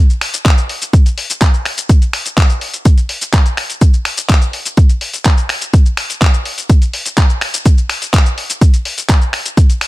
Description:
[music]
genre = house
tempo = 125 BPM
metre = 4/4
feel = straight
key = none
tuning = none
[part]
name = dusty soul sampler-style drum kit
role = drums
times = 0.1-9.9 s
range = finger snaps, handclaps, hi-hat, shaker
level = -18 LUFS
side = left 1 dB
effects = sidechain pumping on hats, sidechain pumping on cymbals, sidechain pumping on perc
[part]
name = electronic kick drum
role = drums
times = 0.5-9.7 s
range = none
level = -9 LUFS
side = equal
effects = overdrive
[sound]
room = little or no reverb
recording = none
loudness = -11 LUFS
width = side -19 dB against mid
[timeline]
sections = 0.0-9.9 A section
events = none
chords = none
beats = 0.46 0.94 1.42 | 1.90 2.38 2.86 3.34 | 3.82 4.30 4.78 5.26 | 5.74 6.22 6.70 7.18 | 7.66 8.14 8.62 9.10 | 9.58

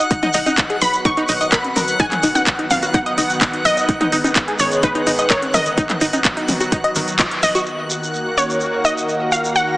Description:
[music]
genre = progressive house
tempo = 127 BPM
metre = 4/4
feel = straight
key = Eb minor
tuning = A4 = 441 Hz
[part]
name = tight sequenced synth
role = arpeggios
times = 0.0-7.6 s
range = Eb3 to D#5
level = -21 LUFS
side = equal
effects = chorus, vintage 12-bit sampler grit, sidechain pumping, digital delay
[part]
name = tight sequencer bass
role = bass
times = 0.0-7.6 s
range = F#1 to B1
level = -29 LUFS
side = equal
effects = sidechain pumping
[part]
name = backwards swelling texture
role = texture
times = 0.0-9.8 s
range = Gb5 to Bb6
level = -26 LUFS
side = left 1 dB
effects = built-in reverb, sidechain pumping
[part]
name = lush unison pad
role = sustained chords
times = 0.1-9.8 s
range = Eb2 to Gb4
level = -24 LUFS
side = equal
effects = chorus, phaser, sidechain pumping
[part]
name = electronic kick drum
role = drums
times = 0.1-7.3 s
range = none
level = -20 LUFS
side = equal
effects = none
[part]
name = house drum kit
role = drums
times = 0.1-7.6 s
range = handclaps, hi-hat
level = -21 LUFS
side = equal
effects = none
[part]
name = shekere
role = percussion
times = 0.1-9.7 s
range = none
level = -27 LUFS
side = right 1 dB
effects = none
[part]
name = electronic toms and congas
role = percussion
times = 0.2-6.6 s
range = none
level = -24 LUFS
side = left 1 dB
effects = sidechain pumping on toms, sidechain pumping on perc
[part]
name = wide unison pluck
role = melody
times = 0.8-9.8 s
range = Cb5 to Db6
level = -19 LUFS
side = equal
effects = digital delay
[sound]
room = moderate lush hall reverb, RT60 1.9 s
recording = heavily compressed radio sound, multiband compression, small speaker sound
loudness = -15 LUFS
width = side -19 dB against mid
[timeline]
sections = 0.0-7.7 A section; 7.7-9.8 B section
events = band accent 7.2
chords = 0.1 B; 3.9 Abm; 7.7 Ebm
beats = | 0.11 0.58 1.05 1.52 | 2.00 2.47 2.94 3.41 | 3.89 4.36 4.83 5.30 | 5.78 6.25 6.72 7.19 | 7.67 8.14 8.61 9.08 | 9.56

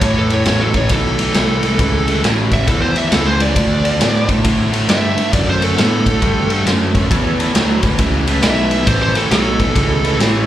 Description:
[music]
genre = blues rock power trio and southern rock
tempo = 136 BPM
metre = 4/4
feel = swing 64% on 8ths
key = A mixolydian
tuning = A4 = 440 Hz
[part]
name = fuzz lead guitar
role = melody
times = 0.0-10.2 s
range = A4 to E5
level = -20 LUFS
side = right 1 dB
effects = distortion, slapback echo
[part]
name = crunchy overdriven guitar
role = riff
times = 0.0-10.5 s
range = A2 to B3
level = -20 LUFS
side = equal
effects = slapback echo
[part]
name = fuzz picked electric bass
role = bass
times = 0.0-10.5 s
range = A1 to A2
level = -18 LUFS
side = equal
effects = overdrive
[part]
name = raw garage drum kit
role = drums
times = 0.0-10.3 s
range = kick drum, ride cymbal, snare drum, splash cymbal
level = -16 LUFS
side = equal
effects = none
[part]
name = overdriven tonewheel organ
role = sustained chords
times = 7.1-10.5 s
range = E4 to C#5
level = -26 LUFS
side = right 2 dB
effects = chorus vibrato, slow rotary speaker
[sound]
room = little or no reverb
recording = live gig heard through the venue's PA, club reverb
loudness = -12 LUFS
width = side -12 dB against mid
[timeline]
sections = 0.0-10.5 A section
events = lead electric guitar solo 0.0-10.5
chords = 0.0 A; 3.6 D; 7.1 A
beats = | 0.01 0.46 0.90 1.35 | 1.79 2.23 2.68 3.12 | 3.56 4.01 4.45 4.89 | 5.33 5.78 6.22 6.66 | 7.11 7.55 7.99 8.43 | 8.88 9.32 9.76 10.20

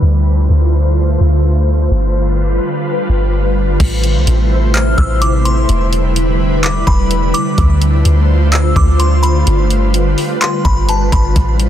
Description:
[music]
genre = hip hop, atmospheric cloud-rap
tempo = 127 BPM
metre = 4/4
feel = half-time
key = A minor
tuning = A4 = 440 Hz
[part]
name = ethereal airy pad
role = sustained chords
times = 0.0-11.7 s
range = C3 to C5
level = -16 LUFS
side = equal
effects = ensemble chorus, built-in reverb, sidechain pumping
[part]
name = soft 808-style bass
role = bass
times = 0.0-11.7 s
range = E1 to D2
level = -12 LUFS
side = equal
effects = none
[part]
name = smooth R&B drum kit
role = drums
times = 3.8-11.7 s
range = crash cymbal, handclaps, hi-hat, kick drum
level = -16 LUFS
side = equal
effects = none
[part]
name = delicate synth tine bell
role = melody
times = 4.7-11.3 s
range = A5 to F6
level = -20 LUFS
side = left 1 dB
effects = chorus, digital delay
[sound]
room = little or no reverb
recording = dense, heavily limited modern master, low-pass filter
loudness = -11 LUFS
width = side -11 dB against mid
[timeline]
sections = 0.0-3.8 A section; 3.8-11.7 B section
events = filter sweep 0.0-3.8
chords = 0.0 Dm7; 1.9 G7; 3.8 Am; 5.7 Em7; 7.6 Dm7; 9.5 G7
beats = | 0.02 0.49 0.97 1.44 | 1.91 2.38 2.86 3.33 | 3.80 4.27 4.75 5.22 | 5.69 6.16 6.63 7.11 | 7.58 8.05 8.53 9.00 | 9.47 9.94 10.41 10.89 | 11.36

